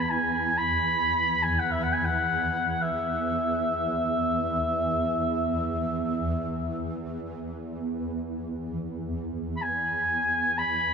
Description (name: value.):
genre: world meditative, free-time meditation music.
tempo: free time.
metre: none.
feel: none.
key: E major pentatonic.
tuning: A4 = 440 Hz.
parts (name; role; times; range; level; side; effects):
warm oboe; melody; 0.0-10.9 s; E5 to B5; -26 LUFS; left 1 dB; ping-pong delay.
shimmering ambient pad; drone; 0.0-10.9 s; E2; -30 LUFS; right 2 dB; chorus, built-in reverb.
room: wet huge ambient reverb, RT60 4.3 s.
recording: none.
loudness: -25 LUFS.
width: side -6 dB against mid.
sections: 0.0-10.9 A section.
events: none.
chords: none.